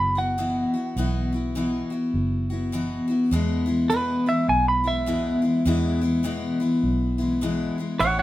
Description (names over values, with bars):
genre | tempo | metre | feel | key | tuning
honky-tonk and classic country | 102 BPM | 4/4 | swing 61% on 8ths | E major | A4 = 444 Hz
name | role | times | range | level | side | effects
clean electric guitar | melody | 0.0-8.2 s | B4 to B5 | -24 LUFS | right 2 dB | none
picked steel-string acoustic guitar | accompaniment | 0.0-8.2 s | E2 to F#4 | -24 LUFS | left 2 dB | none
vintage muted fingered electric bass | bass | 0.0-8.2 s | F#1 to E2 | -27 LUFS | right 1 dB | none
room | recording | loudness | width
moderate studio reverb, RT60 0.6 s | minimal, uncompressed stereo recording | -21 LUFS | side -15 dB against mid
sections
0.0-8.2 A section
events
clean electric guitar solo 0.0-8.2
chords
0.0 Bsus4; 3.3 E